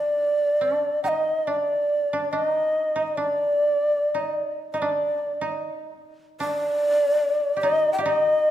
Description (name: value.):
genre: japanese traditional, Japanese chamber music.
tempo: 69-75 BPM.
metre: 4/4.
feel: rubato.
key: unclear.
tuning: A4 = 440 Hz.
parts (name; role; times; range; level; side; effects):
breathy bright long shakuhachi; melody; 0.0-8.5 s; D5 to G5; -21 LUFS; equal; none.
koto; second line; 0.0-8.5 s; D4 to G4; -30 LUFS; right 4 dB; none.
room: moderate concert hall reverb, RT60 1.8 s.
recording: minimal, uncompressed stereo recording.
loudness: -21 LUFS.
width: side -12 dB against mid.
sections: 0.0-8.5 A section.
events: none.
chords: none.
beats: 0.62 1.48 2.33 | 3.17 3.99 4.79 5.60 | 6.41 7.22 8.03.